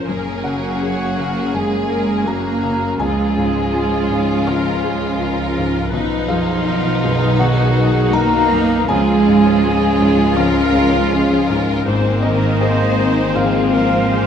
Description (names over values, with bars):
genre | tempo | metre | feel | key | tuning
cinematic, emotional film score for orchestra | 81 BPM | 4/4 | rubato | unclear | A4 = 440 Hz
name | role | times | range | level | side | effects
rich symphonic violin section | melody | 0.0-14.3 s | C4 to Ab4 | -24 LUFS | left 4 dB | none
large flute ensemble | second line | 0.0-14.3 s | Eb5 to Bb5 | -25 LUFS | left 3 dB | none
mellow cor anglais | second line | 0.0-14.3 s | Eb4 to Bb4 | -26 LUFS | right 4 dB | none
warm symphonic violin section | second line | 0.0-14.3 s | Ab3 to D#4 | -26 LUFS | left 2 dB | none
felt-muted upright piano | accompaniment | 0.0-14.3 s | B1 to Bb5 | -23 LUFS | left 3 dB | none
rich symphonic viola section | accompaniment | 0.0-14.3 s | D#4 to Db5 | -26 LUFS | right 2 dB | none
mellow French horn section | sustained chords | 0.0-14.3 s | D#3 to D#4 | -22 LUFS | left 4 dB | none
clear symphonic double bass section | bass | 0.0-14.3 s | Gb1 to Db2 | -22 LUFS | right 3 dB | none
rich symphonic cello section | bass | 0.0-14.3 s | Eb3 to Bb3 | -21 LUFS | right 4 dB | none
room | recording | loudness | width
wet scoring stage reverb, RT60 1.4 s | nothing above 10.9 kHz | -14 LUFS | side -8 dB against mid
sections
0.0-14.3 A section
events
none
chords
0.1 Gbadd9; 3.0 Db; 5.9 B; 8.9 Db; 11.9 Abadd9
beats
| 0.07 0.81 1.54 2.27 | 3.00 3.74 4.47 5.20 | 5.93 6.66 7.40 8.14 | 8.89 9.64 10.38 11.13 | 11.87 12.61 13.35 14.13